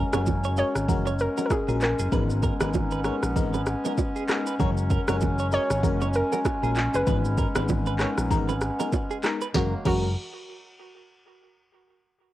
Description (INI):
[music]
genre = afrobeats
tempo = 97 BPM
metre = 4/4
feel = swing 58% on 16ths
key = F# major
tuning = A4 = 440 Hz
[part]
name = FM electric piano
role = accompaniment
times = 0.0-10.1 s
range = G#3 to B4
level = -32 LUFS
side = left 6 dB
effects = chorus, phaser, cassette tape
[part]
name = mellow woodwind section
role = sustained chords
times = 0.0-9.8 s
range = F#3 to C#4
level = -30 LUFS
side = equal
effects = cassette tape
[part]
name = direct-recorded clean electric guitar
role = riff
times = 0.0-10.1 s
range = G#4 to D#5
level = -36 LUFS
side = right 7 dB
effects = tremolo, cassette tape, tape echo
[part]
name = fingered electric bass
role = bass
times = 0.0-10.1 s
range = F#1 to A#1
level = -27 LUFS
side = equal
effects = none
[part]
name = afro-pop drum kit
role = drums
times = 0.1-10.0 s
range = crash cymbal, handclaps, kick drum, rim click, shaker, snare drum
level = -28 LUFS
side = equal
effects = cassette tape
[part]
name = bongos and congas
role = percussion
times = 0.1-10.1 s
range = none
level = -32 LUFS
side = right 6 dB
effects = none
[part]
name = hollow square pluck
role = melody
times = 0.6-10.1 s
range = F#4 to C#5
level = -29 LUFS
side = equal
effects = chorus, cassette tape, tape echo
[sound]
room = light reverb, digital ambience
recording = home recording on cassette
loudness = -22 LUFS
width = side -14 dB against mid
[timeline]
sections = 0.0-9.5 A section; 9.5-12.0 B section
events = none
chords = 0.0 F#add9; 2.1 G#madd9; 4.6 F#add9; 7.1 G#madd9; 9.5 F#add9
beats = 0.27 0.88 1.50 | 2.12 2.74 3.36 3.98 | 4.59 5.21 5.83 6.45 | 7.07 7.69 8.31 8.93 | 9.54